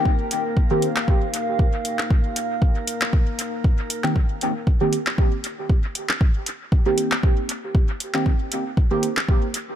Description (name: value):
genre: dub techno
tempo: 117 BPM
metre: 4/4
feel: swing 54% on 16ths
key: C minor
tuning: A4 = 440 Hz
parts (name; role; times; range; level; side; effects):
- warbly tape-like pad; sustained chords; 0.0-4.1 s; Bb3 to F5; -29 LUFS; equal; chorus, built-in reverb, sidechain pumping
- deep mellow chord stab; stabs; 0.0-0.9, 4.0-9.1 s; Eb3 to G4; -24 LUFS; right 1 dB; chorus, phaser, sidechain pumping, dub echo
- drifting glass-harmonics texture; texture; 0.0-4.2 s; Bb4; -37 LUFS; right 6 dB; chorus, built-in reverb, sidechain pumping
- electronic kick drum; drums; 0.1-9.4 s; none; -18 LUFS; equal; none
- deep house drum kit; drums; 0.3-9.7 s; handclaps, hi-hat; -27 LUFS; equal; dub echo
room: digital ambience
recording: echo-heavy mix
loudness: -19 LUFS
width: side -10 dB against mid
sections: 0.0-4.2 A section; 4.2-9.8 A section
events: none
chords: 0.0 Cm7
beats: | 0.06 0.57 1.08 1.59 | 2.11 2.62 3.13 3.64 | 4.16 4.67 5.18 5.70 | 6.21 6.72 7.23 7.75 | 8.26 8.77 9.29